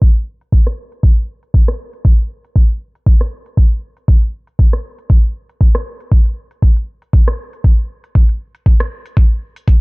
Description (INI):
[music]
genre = nu-disco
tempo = 118 BPM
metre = 4/4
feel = swing 55% on 16ths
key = none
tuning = none
[part]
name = electronic kick drum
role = drums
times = 0.0-9.8 s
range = none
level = -10 LUFS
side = equal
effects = small room reverb
[part]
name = pop drum kit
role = drums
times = 0.0-9.8 s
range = hi-hat, rim click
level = -26 LUFS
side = equal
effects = small room reverb
[sound]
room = little or no reverb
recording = dry, gritty hardware recording, low-pass filter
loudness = -12 LUFS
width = side -34 dB against mid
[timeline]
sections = 0.0-9.8 A section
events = filter sweep 0.0-9.8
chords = none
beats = | 0.02 0.52 1.03 1.54 | 2.05 2.56 3.07 3.58 | 4.08 4.59 5.10 5.61 | 6.12 6.63 7.13 7.64 | 8.15 8.66 9.17 9.68